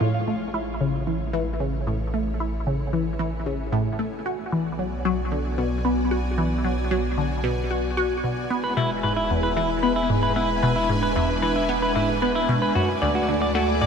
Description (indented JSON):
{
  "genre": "ambient, sequencer-driven space music",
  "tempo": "113 BPM",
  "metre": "4/4",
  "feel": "straight",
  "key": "unclear",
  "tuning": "A4 = 440 Hz",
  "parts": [
    { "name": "string machine, full ensemble", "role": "sustained chords", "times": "0.0-13.9 s", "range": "G#3 to D5", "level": "-29 LUFS", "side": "equal", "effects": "ensemble chorus, shimmer reverb" },
    { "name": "resonant blip pluck", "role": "riff", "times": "0.0-13.9 s", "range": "D2 to F#4", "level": "-24 LUFS", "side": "equal", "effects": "phaser, wide subtle chorus, analog delay" },
    { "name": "round analog bass", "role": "bass", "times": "0.0-13.9 s", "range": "E1 to D2", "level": "-30 LUFS", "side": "equal", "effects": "none" },
    { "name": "bubbling stepped-filter texture", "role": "texture", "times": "2.5-13.9 s", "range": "G#5", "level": "-35 LUFS", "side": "equal", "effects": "chorus, built-in reverb, shimmer reverb" },
    { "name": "semi-hollow electric guitar", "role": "arpeggios", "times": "8.6-13.9 s", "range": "E4 to D5", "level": "-26 LUFS", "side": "left 1 dB", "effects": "auto-pan, analog delay, shimmer reverb" }
  ],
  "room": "wet huge ambient reverb, RT60 6.9 s",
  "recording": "none",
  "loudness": "-21 LUFS",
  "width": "side -6 dB against mid",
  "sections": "0.0-13.9 A section",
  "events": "fade-in on string machine 0.0-13.9; fade-in on synth texture 0.0-13.9",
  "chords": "0.0 A; 4.3 Bm; 8.5 E; 12.8 D"
}